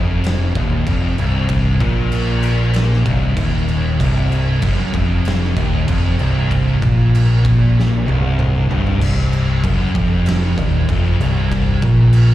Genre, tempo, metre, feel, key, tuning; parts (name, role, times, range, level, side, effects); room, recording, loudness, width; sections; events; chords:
stoner and doom metal; 96 BPM; 4/4; straight; C minor; A4 = 440 Hz
distorted electric guitar; riff; 0.0-9.0 s; C2 to Bb2; -26 LUFS; right 1 dB; overdrive
thick fuzz guitar; riff; 0.0-12.3 s; C2 to Bb2; -19 LUFS; left 4 dB; distortion
growling fingered electric bass; bass; 0.0-12.3 s; C1 to Bb1; -18 LUFS; equal; overdrive
oversized low-tuned drum kit; drums; 0.2-12.3 s; crash cymbal, kick drum, snare drum, toms; -20 LUFS; right 1 dB
thick fuzz guitar; riff; 4.0-12.3 s; C2 to Bb2; -19 LUFS; right 4 dB; distortion
studio ambience; live gig heard through the venue's PA, club reverb; -14 LUFS; side -14 dB against mid
0.0-9.0 A section; 9.0-12.3 A section
drum fill 7.8-9.0
0.0 Cm